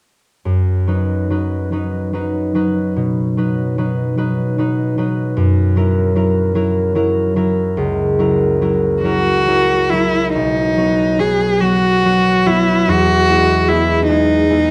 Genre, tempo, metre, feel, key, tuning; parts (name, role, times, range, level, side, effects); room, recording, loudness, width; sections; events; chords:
classical, romantic duo for cello and harp; 44-51 BPM (dotted quarters); 12/8; rubato; B major; A4 = 440 Hz
concert harp; accompaniment; 0.5-14.7 s; B1 to B4; -18 LUFS; equal
rich cello; melody; 9.0-14.7 s; D#4 to G#4; -16 LUFS; equal
moderate scoring stage reverb, RT60 1.9 s; close, detailed microphones; -16 LUFS; mono
0.5-10.4 A section; 10.4-14.7 B section
0.5 B/F#; 5.4 F#7; 10.4 B; 12.9 Emaj7